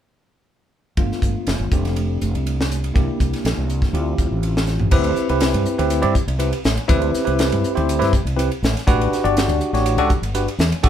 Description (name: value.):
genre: electric jazz fusion.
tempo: 122 BPM.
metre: 4/4.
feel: straight.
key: D minor.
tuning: A4 = 441 Hz.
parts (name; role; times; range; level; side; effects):
barky tine electric piano; accompaniment; 1.0-10.9 s; A3 to D5; -21 LUFS; equal; medium stereo tremolo.
fretless electric bass; bass; 1.0-10.9 s; F1 to G2; -21 LUFS; equal; none.
crisp fusion drum kit; drums; 1.0-10.9 s; crash cymbal, hi-hat, kick drum, ride cymbal, snare drum, toms; -21 LUFS; equal; none.
room: light reverb.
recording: band playing live in one room.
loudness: -17 LUFS.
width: side -10 dB against mid.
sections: 1.0-4.9 A section; 4.9-10.9 B section.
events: drum fill 4.7.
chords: 1.0 G9; 1.7 F6; 3.0 C9; 3.9 Dm11; 4.9 D13sus4; 8.9 A13sus4.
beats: | 0.98 1.47 1.96 2.46 | 2.95 3.44 3.94 4.43 | 4.92 5.42 5.91 6.40 | 6.90 7.39 7.88 8.38 | 8.87 9.37 9.86 10.36 | 10.85.